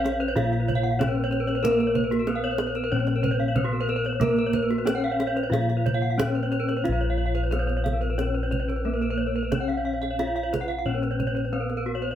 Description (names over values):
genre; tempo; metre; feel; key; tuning
Balinese gamelan; 91 BPM; 4/4; uneven beats; Bb pelog; A4 = 440 Hz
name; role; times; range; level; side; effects
gamelan-type bronze metallophone; melody; 0.0-12.2 s; Bb3 to F4-30c; -29 LUFS; right 1 dB; none
gamelan-type bronze metallophone; arpeggios; 0.0-12.2 s; Gb4-20c to Gb5-20c; -30 LUFS; left 3 dB; none
gamelan-type bronze metallophone; arpeggios; 0.0-12.1 s; Gb4-20c to Gb5-20c; -32 LUFS; right 5 dB; none
gamelan-type bossed gongs; bass; 0.0-12.2 s; Bb1 to Bb4; -27 LUFS; left 2 dB; none
kendang; percussion; 0.1-11.8 s; none; -31 LUFS; right 3 dB; none
room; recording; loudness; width
moderate studio reverb, RT60 0.7 s; none; -22 LUFS; side -10 dB against mid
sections
0.0-6.8 A section; 6.8-12.2 B section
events
none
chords
none